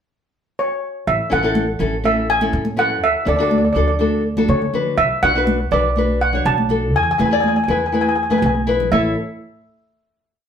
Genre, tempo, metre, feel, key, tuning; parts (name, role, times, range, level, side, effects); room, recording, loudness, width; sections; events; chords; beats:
calypso; 122 BPM; 4/4; straight; A major; A4 = 440 Hz
steel pan; melody; 0.6-9.1 s; C#5 to A5; -19 LUFS; right 1 dB
upright bass; bass; 1.1-9.1 s; A1 to D3; -23 LUFS; equal
nylon-string guitar; accompaniment; 1.3-9.2 s; C#4 to D5; -21 LUFS; left 4 dB
congas; percussion; 1.6-9.1 s; -22 LUFS; right 1 dB
wet studio reverb, RT60 0.7 s; band playing live in one room; -15 LUFS; side -8 dB against mid
0.0-1.1 pickup bar; 1.1-8.9 verse; 8.9-10.5 final chord
drum fill 8.5-8.9
0.0 N.C.; 1.1 Amaj7; 3.0 Dmaj7; 5.0 Bm7; 6.9 E; 8.9 A
0.09 0.58 | 1.07 1.56 2.05 2.53 | 3.02 3.51 4.00 4.49 | 4.98 5.47 5.96 6.46 | 6.95 7.44 7.93 8.43 | 8.92